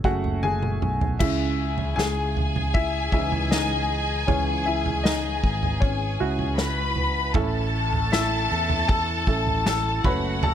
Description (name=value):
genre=pop ballad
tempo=78 BPM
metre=4/4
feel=straight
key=C# minor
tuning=A4 = 441 Hz
part: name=warm baby grand piano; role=melody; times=0.0-10.5 s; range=C#4 to B5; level=-29 LUFS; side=left 3 dB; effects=ping-pong delay
part: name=warm upright piano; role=accompaniment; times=0.0-10.5 s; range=A2 to C#5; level=-30 LUFS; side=right 5 dB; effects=none
part: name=sustaining fretless electric bass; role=bass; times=0.0-10.5 s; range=F#1 to E2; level=-28 LUFS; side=equal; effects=analog chorus
part: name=unplugged drum kit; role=drums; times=0.0-10.5 s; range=crash cymbal, kick drum, snare drum, toms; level=-26 LUFS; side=equal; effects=none
part: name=warm symphonic violin section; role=second line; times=1.2-10.5 s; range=F#4 to B5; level=-27 LUFS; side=left 3 dB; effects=ping-pong delay
room=small room ambience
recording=none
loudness=-21 LUFS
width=side -10 dB against mid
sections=0.0-1.2 A section; 1.2-10.5 B section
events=drum fill 0.4-1.2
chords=0.0 F#madd9; 1.2 C#m; 7.4 A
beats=0.44 | 1.21 1.97 2.74 3.51 | 4.28 5.05 5.82 6.59 | 7.36 8.13 8.90 9.67 | 10.44